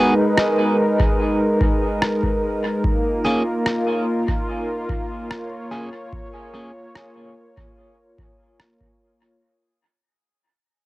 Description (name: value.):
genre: ambient dub.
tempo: 73 BPM.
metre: 4/4.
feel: straight.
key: unclear.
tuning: A4 = 440 Hz.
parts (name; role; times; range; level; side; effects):
warm analog pad; sustained chords; 0.0-9.4 s; G#3 to C#5; -21 LUFS; equal; chorus, tremolo, cassette tape.
clean electric guitar; stabs; 0.0-6.7 s; A#3 to G#4; -24 LUFS; equal; low-pass filter, cassette tape, dub echo.
electronic rim click; drums; 0.4-8.8 s; none; -26 LUFS; equal; small room ambience, cassette tape, dub echo.
electronic kick drum; drums; 1.0-9.0 s; none; -22 LUFS; equal; small room ambience, cassette tape.
room: light reverb.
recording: home recording on cassette.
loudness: -18 LUFS.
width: side -18 dB against mid.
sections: 0.0-9.4 A section.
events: fade-out 0.0-9.4; filter sweep on clean electric guitar 0.0-9.4.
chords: 0.0 G#m; 2.8 A#m.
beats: 0.38 1.20 2.02 | 2.84 3.66 4.49 5.31 | 6.13 6.95 7.77 8.60.